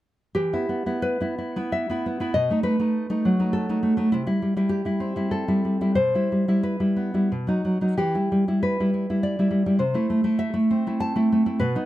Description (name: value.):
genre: romantic piece for solo classical guitar.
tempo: 83-105 BPM.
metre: 3/4.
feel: rubato.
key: E minor.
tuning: A4 = 441 Hz.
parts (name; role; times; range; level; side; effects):
nylon-string guitar; solo; 0.3-11.9 s; B2 to A5; -21 LUFS; equal; none.
room: light reverb.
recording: dark, warm production.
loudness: -21 LUFS.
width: side -14 dB against mid.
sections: 0.4-11.9 A section.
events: none.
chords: 0.4 Em; 2.3 B7; 4.1 C; 6.0 Em/B; 7.3 B; 8.0 Em; 9.8 Am/C.